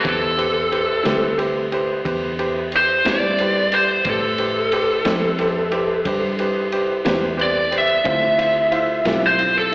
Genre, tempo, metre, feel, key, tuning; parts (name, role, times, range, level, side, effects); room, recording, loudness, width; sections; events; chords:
slow blues; 60 BPM (dotted quarters); 12/8; straight; A minor; A4 = 440 Hz
lead guitar through a small cranked amp; melody; 0.0-9.7 s; A4 to E5; -18 LUFS; equal; overdrive, slapback echo
clear upright piano; accompaniment; 0.0-9.7 s; E4 to C5; -22 LUFS; equal; slapback echo
vintage muted fingered electric bass; bass; 0.0-9.7 s; B1 to A2; -28 LUFS; equal
crunchy breakbeat drum kit; drums; 0.0-9.7 s; kick drum, ride cymbal, snare drum; -26 LUFS; equal
electric guitar through a small old amp; accompaniment; 1.0-9.3 s; A2 to F4; -27 LUFS; left 1 dB; tremolo, slapback echo
light reverb; live gig heard through the venue's PA, recital hall reverb, AM radio sound; -16 LUFS; side -22 dB against mid
0.0-9.7 A section
lead electric guitar solo 0.0-9.7
0.0 Am7; 8.1 Dm7